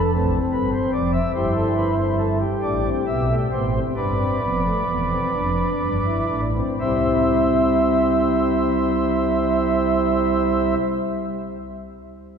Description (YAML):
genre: classical, baroque-style 4-part fugue for pipe organ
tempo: 40-50 BPM (dotted quarters)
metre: 12/8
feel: straight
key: C major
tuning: A4 = 440 Hz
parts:
  - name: pipe organ, flutes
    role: solo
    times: 0.0-10.8 s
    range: E1 to E5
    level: -19 LUFS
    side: equal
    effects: none
room: wet church reverb, RT60 3.6 s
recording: heard from further back in the room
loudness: -18 LUFS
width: side -6 dB against mid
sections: 0.0-6.8 A section; 6.8-12.4 B section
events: slowing down 0.0-6.8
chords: 0.0 Dm7; 1.4 C/G; 4.0 G7; 6.8 C